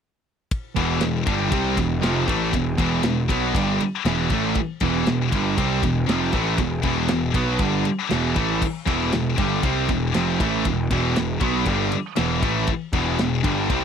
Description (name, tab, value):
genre	heavy metal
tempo	118 BPM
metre	4/4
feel	straight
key	E minor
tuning	A4 = 440 Hz
part	tight metal drum kit	drums	0.5-13.8 s	crash cymbal, kick drum, ride cymbal, snare drum	-25 LUFS	equal	none
part	sludgy distorted guitar	riff	0.7-13.8 s	E2 to C4	-26 LUFS	right 11 dB	overdrive
part	heavy high-gain guitar	riff	0.8-13.8 s	E2 to C4	-26 LUFS	left 13 dB	distortion
part	high-gain distorted guitar	riff	0.8-13.8 s	E2 to C4	-26 LUFS	equal	distortion
part	fuzz picked electric bass	bass	0.8-13.8 s	E1 to C2	-26 LUFS	left 1 dB	overdrive
room	little or no reverb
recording	dry, close 1970s-style studio recording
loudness	-19 LUFS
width	side -7 dB against mid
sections	0.5-13.8 A section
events	none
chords	0.5 Em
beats	| 0.52 1.03 1.53 2.04 | 2.54 3.05 3.56 4.06 | 4.57 5.08 5.58 6.09 | 6.60 7.10 7.61 8.12 | 8.63 9.13 9.64 10.15 | 10.66 11.17 11.68 12.19 | 12.69 13.20 13.71